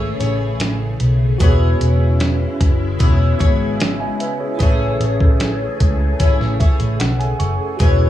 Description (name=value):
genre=indie pop, bedroom pop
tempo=75 BPM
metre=4/4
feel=straight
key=unclear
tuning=A4 = 443 Hz
part: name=picked steel-string acoustic guitar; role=accompaniment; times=0.0-8.1 s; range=E3 to C#5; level=-24 LUFS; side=left 4 dB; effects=wide subtle chorus, vibrato effect
part: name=tine electric piano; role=accompaniment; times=0.0-8.1 s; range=E4 to C#6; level=-26 LUFS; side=right 4 dB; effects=medium stereo tremolo
part: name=phased string machine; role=sustained chords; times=0.0-8.1 s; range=C#3 to G#4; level=-25 LUFS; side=left 2 dB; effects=ensemble chorus, phaser
part: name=vintage muted fingered electric bass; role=bass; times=0.0-8.1 s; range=E1 to C#2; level=-17 LUFS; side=equal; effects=none
part: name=dusty soul sampler-style drum kit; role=drums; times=0.2-8.0 s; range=hi-hat, kick drum, snare drum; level=-17 LUFS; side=equal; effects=none
room=light reverb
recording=small room ambience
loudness=-14 LUFS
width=side -12 dB against mid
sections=0.0-8.1 A section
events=tine electric piano fill 6.2-7.8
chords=0.0 Amaj7; 1.4 E6; 4.6 Amaj7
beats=0.60 | 1.40 2.20 3.00 3.80 | 4.60 5.40 6.20 7.00 | 7.80